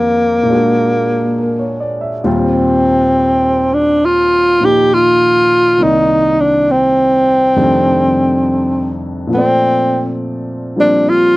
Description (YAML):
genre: jazz ballad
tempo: 68 BPM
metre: 4/4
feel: swing 66% on 8ths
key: Bb major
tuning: A4 = 441 Hz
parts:
  - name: breathy tenor saxophone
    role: melody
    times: 0.0-11.4 s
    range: Bb3 to G4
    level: -11 LUFS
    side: equal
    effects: cassette tape
  - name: warm concert grand piano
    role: accompaniment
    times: 0.0-11.4 s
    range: C2 to E5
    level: -17 LUFS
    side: equal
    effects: cassette tape
room: light reverb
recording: home recording on cassette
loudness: -10 LUFS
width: side -19 dB against mid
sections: 0.0-11.4 A section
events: none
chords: 0.5 Bbaug7; 2.3 Eb69; 5.8 Cm9; 7.5 F13; 9.3 Bbmaj9